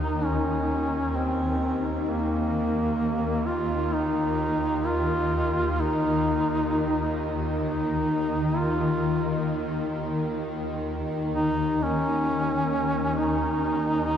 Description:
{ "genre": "dark ambient drone", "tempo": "free time", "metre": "none", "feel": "none", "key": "unclear", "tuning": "A4 = 438 Hz", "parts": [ { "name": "warm duduk", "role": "melody", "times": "0.0-14.2 s", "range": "Bb3 to F4", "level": "-26 LUFS", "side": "right 1 dB", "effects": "shimmer reverb, diffuse ambient delay" }, { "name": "swarming drone", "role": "drone", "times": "0.0-14.2 s", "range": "Eb2 to Eb3", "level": "-27 LUFS", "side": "left 1 dB", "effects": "built-in reverb" } ], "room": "wet cathedral reverb, RT60 6.6 s", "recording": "none", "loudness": "-23 LUFS", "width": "side -9 dB against mid", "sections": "0.0-14.2 A section", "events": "none", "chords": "none" }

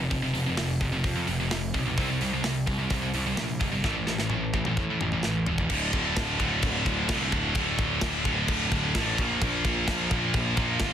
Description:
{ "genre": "heavy metal", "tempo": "129 BPM", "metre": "4/4", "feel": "straight", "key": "D minor from 5.7 s", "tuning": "A4 = 440 Hz", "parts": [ { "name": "scooped high-gain guitar", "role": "riff", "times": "0.0-10.9 s", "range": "D2 to C4", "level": "-27 LUFS", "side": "equal", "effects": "distortion" }, { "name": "fuzz picked electric bass", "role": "bass", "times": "0.0-10.9 s", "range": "D1 to A2", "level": "-32 LUFS", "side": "equal", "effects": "overdrive" }, { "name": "tight metal drum kit", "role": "drums", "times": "0.1-10.9 s", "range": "crash cymbal, hi-hat, kick drum, snare drum, toms", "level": "-30 LUFS", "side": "equal", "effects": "soft clipping on kick" } ], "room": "small room ambience", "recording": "dense, heavily limited modern master", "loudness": "-24 LUFS", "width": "side -9 dB against mid", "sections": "0.0-5.7 A section; 5.7-10.9 B section", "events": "drum fill 3.8-5.7", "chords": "0.0 F5; 2.0 C5; 3.8 A5; 5.7 D5; 9.2 Bb5" }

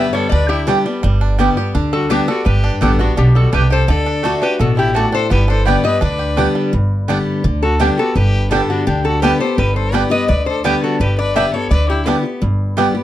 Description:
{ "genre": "bluegrass", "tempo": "169 BPM", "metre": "4/4", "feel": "straight", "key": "G major", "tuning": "A4 = 441 Hz", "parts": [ { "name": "bluegrass banjo", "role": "melody", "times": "0.0-12.9 s", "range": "D3 to G4", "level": "-25 LUFS", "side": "right 5 dB", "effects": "none" }, { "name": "lap resonator guitar", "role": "melody", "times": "0.0-12.0 s", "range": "F#4 to E5", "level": "-20 LUFS", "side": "left 3 dB", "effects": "none" }, { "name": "clear fiddle", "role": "second line", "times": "0.0-12.1 s", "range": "D4 to B4", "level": "-24 LUFS", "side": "left 2 dB", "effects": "none" }, { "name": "picked steel-string acoustic guitar", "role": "accompaniment", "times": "0.0-13.0 s", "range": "G2 to G4", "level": "-19 LUFS", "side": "left 2 dB", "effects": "none" }, { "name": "mandolin", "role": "stabs", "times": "0.0-12.9 s", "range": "A3 to A5", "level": "-19 LUFS", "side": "right 7 dB", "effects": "none" }, { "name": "upright bass", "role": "bass", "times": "0.0-12.9 s", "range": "G1 to D2", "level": "-16 LUFS", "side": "right 1 dB", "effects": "none" } ], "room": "light reverb", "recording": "dark, warm production", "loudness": "-13 LUFS", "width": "side -13 dB against mid", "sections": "0.0-6.7 A section; 6.7-13.0 A section", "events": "none", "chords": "0.0 G; 3.9 D; 5.3 G" }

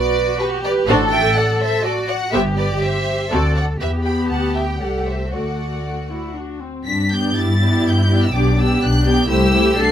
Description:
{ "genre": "quick classical-period movement for string orchestra", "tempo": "123 BPM", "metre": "3/4", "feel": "rubato", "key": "G major", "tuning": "A4 = 440 Hz", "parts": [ { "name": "clear studio violin section", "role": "melody", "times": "0.0-9.9 s", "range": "B4 to C7", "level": "-23 LUFS", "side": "left 1 dB", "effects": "none" }, { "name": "warm studio violin section", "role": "second line", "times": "0.0-9.9 s", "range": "F#4 to G5", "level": "-25 LUFS", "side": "right 2 dB", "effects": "none" }, { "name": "warm studio cello section", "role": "bass", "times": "0.0-9.9 s", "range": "D4 to A4", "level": "-23 LUFS", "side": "equal", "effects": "none" }, { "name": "rich studio viola section", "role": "accompaniment", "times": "0.9-9.9 s", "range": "A3 to A4", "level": "-22 LUFS", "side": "equal", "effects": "none" }, { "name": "warm studio double bass section", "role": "bass", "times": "0.9-9.9 s", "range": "G1 to G2", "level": "-20 LUFS", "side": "equal", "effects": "none" } ], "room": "little or no reverb", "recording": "close, detailed microphones", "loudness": "-15 LUFS", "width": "side -10 dB against mid", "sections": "0.0-6.9 A section; 6.9-9.9 B section", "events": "none", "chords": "0.0 Bm; 0.9 D/A; 2.3 G; 3.3 D7; 3.8 Em; 4.8 Am/C; 5.3 D; 6.9 G; 8.3 G/B; 9.3 Am7/C" }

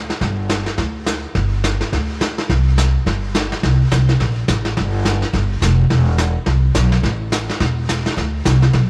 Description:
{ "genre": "country, western swing", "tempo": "211 BPM", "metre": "4/4", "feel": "swing 60% on 8ths", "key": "G mixolydian", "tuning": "A4 = 436 Hz", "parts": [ { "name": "upright bass", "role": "bass", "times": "0.0-8.9 s", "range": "E1 to D2", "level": "-19 LUFS", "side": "equal", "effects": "none" }, { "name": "vintage brush drum kit", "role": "drums", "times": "0.1-8.9 s", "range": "brushed snare drum, hi-hat, kick drum, snare drum", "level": "-24 LUFS", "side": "equal", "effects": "none" } ], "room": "light reverb", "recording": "none", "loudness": "-18 LUFS", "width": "mono", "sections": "0.0-8.9 A section", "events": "none", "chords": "none" }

